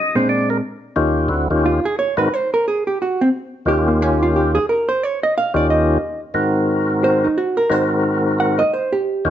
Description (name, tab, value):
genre	jazz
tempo	178 BPM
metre	4/4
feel	swing 62% on 8ths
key	Eb mixolydian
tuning	A4 = 440 Hz
part	percussive tonewheel organ	melody	0.0-9.3 s	D2 to Eb5	-17 LUFS	left 1 dB	slow rotary speaker
part	hollow-body jazz guitar	accompaniment	0.2-9.2 s	Bb2 to Gb5	-18 LUFS	right 2 dB	none
room	moderate large studio reverb, RT60 1.2 s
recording	nothing above 7.8 kHz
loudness	-16 LUFS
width	side -10 dB against mid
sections	1.0-9.3 A section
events	hollow-body jazz guitar solo 1.0-9.3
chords	0.0 Bb9; 1.0 Eb9; 2.3 N.C.; 3.7 Eb9; 6.3 Ab9